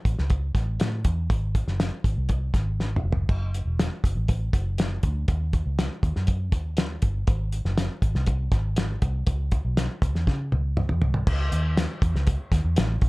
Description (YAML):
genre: uptempo 1960s-style soul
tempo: 120 BPM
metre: 4/4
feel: straight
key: C# minor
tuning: A4 = 441 Hz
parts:
  - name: vintage muted fingered electric bass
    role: bass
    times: 0.1-13.1 s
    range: E1 to C#3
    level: -25 LUFS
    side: equal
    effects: none
  - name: cloth-damped thuddy drum kit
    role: drums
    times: 0.1-13.1 s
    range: crash cymbal, hi-hat, kick drum, snare drum, splash cymbal, toms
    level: -24 LUFS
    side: equal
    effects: none
room: little or no reverb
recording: dark, warm production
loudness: -22 LUFS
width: side -23 dB against mid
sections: 0.0-11.3 A section; 11.3-13.1 B section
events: drum fill 2.8-3.3, 10.3-11.3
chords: none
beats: 0.30 0.80 | 1.30 1.80 2.30 2.79 | 3.29 3.79 4.29 4.79 | 5.29 5.78 6.28 6.78 | 7.28 7.78 8.28 8.78 | 9.28 9.78 10.28 10.78 | 11.28 11.77 12.27 12.77